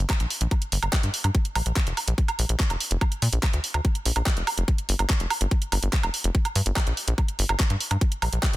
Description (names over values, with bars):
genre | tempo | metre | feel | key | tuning
psychedelic trance | 144 BPM | 4/4 | straight | unclear | A4 = 440 Hz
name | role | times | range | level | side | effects
tight sequencer bass | bass | 0.0-8.6 s | F1 to Bb2 | -24 LUFS | equal | none
electronic kick drum | drums | 0.1-8.5 s | none | -23 LUFS | equal | overdrive
garage drum kit | drums | 0.1-8.6 s | handclaps, hi-hat, woodblock | -27 LUFS | right 2 dB | overdrive
room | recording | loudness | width
little or no reverb | dense, heavily limited modern master | -22 LUFS | side -16 dB against mid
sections
0.0-8.6 A section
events
none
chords
none